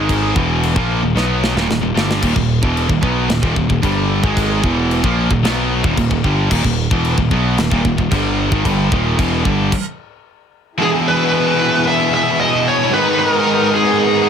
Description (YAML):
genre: heavy metal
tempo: 112 BPM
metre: 4/4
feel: straight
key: unclear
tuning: A4 = 440 Hz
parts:
  - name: high-gain distorted guitar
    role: riff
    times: 0.0-14.3 s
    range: Eb2 to Cb4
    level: -20 LUFS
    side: right 11 dB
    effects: distortion
  - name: scooped high-gain guitar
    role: riff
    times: 0.0-14.3 s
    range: Eb2 to E4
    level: -21 LUFS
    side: left 12 dB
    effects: distortion
  - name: thick fuzz guitar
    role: riff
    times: 0.0-14.3 s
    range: Eb2 to Cb4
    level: -21 LUFS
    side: left 1 dB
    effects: distortion
  - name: modern bright picked electric bass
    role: bass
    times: 0.0-9.7 s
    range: Eb1 to Cb2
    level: -20 LUFS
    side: equal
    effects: none
  - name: tight metal drum kit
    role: drums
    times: 0.1-9.8 s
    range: china cymbal, crash cymbal, kick drum, snare drum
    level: -20 LUFS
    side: left 1 dB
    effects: none
  - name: high-gain lead guitar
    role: melody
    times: 10.8-14.3 s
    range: G#4 to E5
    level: -16 LUFS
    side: equal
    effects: distortion
  - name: warm studio string section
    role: sustained chords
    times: 10.8-14.3 s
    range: E3 to Eb5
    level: -24 LUFS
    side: left 3 dB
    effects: none
room: little or no reverb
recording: none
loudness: -13 LUFS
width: side -8 dB against mid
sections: 0.0-10.8 A section; 10.8-14.3 B section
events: drum fill 1.2-2.2; stop 9.7-10.8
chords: 0.0 Eb; 10.8 E; 12.9 Abm